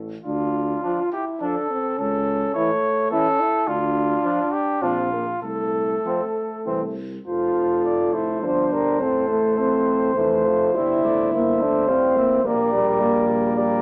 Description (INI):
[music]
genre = classical, brass quintet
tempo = 104 BPM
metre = 3/4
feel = rubato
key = F major from 3.7 s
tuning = A4 = 440 Hz
[part]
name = warm tuba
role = bass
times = 0.0-13.8 s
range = F1 to D2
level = -33 LUFS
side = equal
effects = none
[part]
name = mellow trumpet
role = melody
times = 0.2-13.8 s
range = F4 to F5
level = -28 LUFS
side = equal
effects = none
[part]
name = warm French horn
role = accompaniment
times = 0.3-13.8 s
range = G3 to F4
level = -26 LUFS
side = equal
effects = none
[part]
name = warm flugelhorn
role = second line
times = 0.8-13.8 s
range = C4 to C5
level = -27 LUFS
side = equal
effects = none
[part]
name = mellow euphonium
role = accompaniment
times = 0.8-13.8 s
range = E3 to C4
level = -28 LUFS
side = equal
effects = none
[sound]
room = moderate large studio reverb, RT60 1.1 s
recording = none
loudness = -22 LUFS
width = mono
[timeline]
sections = 0.0-7.3 A section; 7.3-13.8 B section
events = none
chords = 0.3 Dm; 2.0 A/C#; 3.7 Dm; 4.8 Bb; 5.4 F/C; 6.7 C; 7.3 F; 9.0 F/A; 10.8 G5; 12.4 Gm/Bb